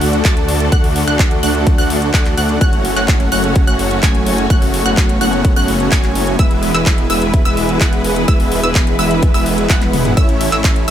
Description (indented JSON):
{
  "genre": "EDM, festival progressive house",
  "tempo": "127 BPM",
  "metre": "4/4",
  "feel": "straight",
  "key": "unclear",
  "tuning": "A4 = 440 Hz",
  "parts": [
    { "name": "rich symphonic string section", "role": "sustained chords", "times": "0.0-10.9 s", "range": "D3 to B4", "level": "-22 LUFS", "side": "left 1 dB", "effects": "sidechain pumping" },
    { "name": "wide unison pluck", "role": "arpeggios", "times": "0.0-10.9 s", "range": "E6 to A6", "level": "-23 LUFS", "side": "right 2 dB", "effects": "sidechain pumping, ping-pong delay" },
    { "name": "dense compressed supersaw", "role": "riff", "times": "0.0-10.9 s", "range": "G#3 to A5", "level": "-18 LUFS", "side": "equal", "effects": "sidechain pumping, ping-pong delay" },
    { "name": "wide detuned saw bass", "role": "bass", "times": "0.0-10.9 s", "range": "E1 to D2", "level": "-20 LUFS", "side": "equal", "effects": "chorus, sidechain pumping" },
    { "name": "big-room dance drum kit", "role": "drums", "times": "0.0-10.9 s", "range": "handclaps, hi-hat, ride cymbal, toms", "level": "-21 LUFS", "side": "left 1 dB", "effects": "none" },
    { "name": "electronic kick drum", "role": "drums", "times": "0.2-10.7 s", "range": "none", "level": "-14 LUFS", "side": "equal", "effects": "none" }
  ],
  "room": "little or no reverb",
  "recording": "none",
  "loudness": "-11 LUFS",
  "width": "side -10 dB against mid",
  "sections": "0.0-10.9 A section",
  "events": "drum fill 9.8-10.2",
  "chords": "0.0 D; 2.6 F#m; 6.4 E; 10.2 A"
}